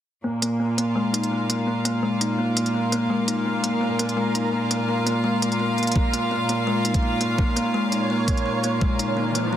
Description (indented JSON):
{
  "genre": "half-time drum and bass",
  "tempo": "168 BPM",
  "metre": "4/4",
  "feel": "half-time",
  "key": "Bb minor",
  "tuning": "A4 = 440 Hz",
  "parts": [
    { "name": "rich chamber string section", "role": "sustained chords", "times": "0.2-9.6 s", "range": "Bb2 to F5", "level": "-25 LUFS", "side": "equal", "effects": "sidechain pumping" },
    { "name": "kalimba", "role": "arpeggios", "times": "0.2-9.6 s", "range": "Ab3 to Eb4", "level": "-24 LUFS", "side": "left 1 dB", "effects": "low-pass filter, dub echo" },
    { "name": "backwards swelling texture", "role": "texture", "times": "2.2-9.6 s", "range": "Bb3 to Db5", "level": "-32 LUFS", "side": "right 2 dB", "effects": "built-in reverb" },
    { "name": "electronic hi-hat", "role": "drums", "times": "0.4-9.4 s", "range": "none", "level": "-26 LUFS", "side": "equal", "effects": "none" },
    { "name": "electronic kick drum", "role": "drums", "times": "6.0-8.9 s", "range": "none", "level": "-22 LUFS", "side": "equal", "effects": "overdrive" },
    { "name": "riser", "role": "sound effects", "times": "9.2-9.6 s", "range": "none", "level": "-30 LUFS", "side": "equal", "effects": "none" }
  ],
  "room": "moderate huge ambient reverb, RT60 4.0 s",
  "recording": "heavily compressed radio sound",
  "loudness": "-20 LUFS",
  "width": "side -10 dB against mid",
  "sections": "0.2-9.6 A section",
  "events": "filter sweep on kalimba 0.2-9.6; riser 9.2-9.6",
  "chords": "0.2 Bb5",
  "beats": "| 0.24 0.60 0.96 1.31 | 1.67 2.03 2.39 2.74 | 3.10 3.46 3.81 4.17 | 4.53 4.89 5.24 5.60 | 5.96 6.32 6.67 7.03 | 7.39 7.74 8.10 8.46 | 8.81 9.17 9.53"
}